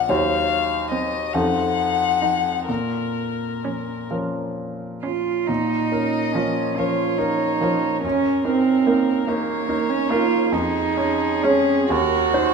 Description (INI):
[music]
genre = classical, slow romantic movement for piano quartet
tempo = 42-50 BPM (dotted quarters)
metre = 6/8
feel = rubato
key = Bb minor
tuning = A4 = 440 Hz
[part]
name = warm violin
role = melody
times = 0.0-12.5 s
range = Ab4 to Gb5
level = -25 LUFS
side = left 9 dB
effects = none
[part]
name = clear baby grand piano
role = accompaniment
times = 0.0-12.5 s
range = Bb1 to Db5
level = -23 LUFS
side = equal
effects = none
[part]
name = rich cello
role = second line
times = 0.9-12.5 s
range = F3 to Gb4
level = -22 LUFS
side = right 6 dB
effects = none
[part]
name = warm viola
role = accompaniment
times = 0.9-11.8 s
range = F3 to Eb4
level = -30 LUFS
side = right 4 dB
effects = none
[sound]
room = wet recital hall reverb, RT60 1.3 s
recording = minimal, uncompressed stereo recording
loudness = -19 LUFS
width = side -5 dB against mid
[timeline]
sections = 0.0-5.5 A section; 5.5-12.5 A section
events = none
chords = 0.1 Cdim/Eb; 1.3 F7b9; 2.7 Bbm; 8.0 Gb6; 10.5 Db/F; 11.9 Cdim/Eb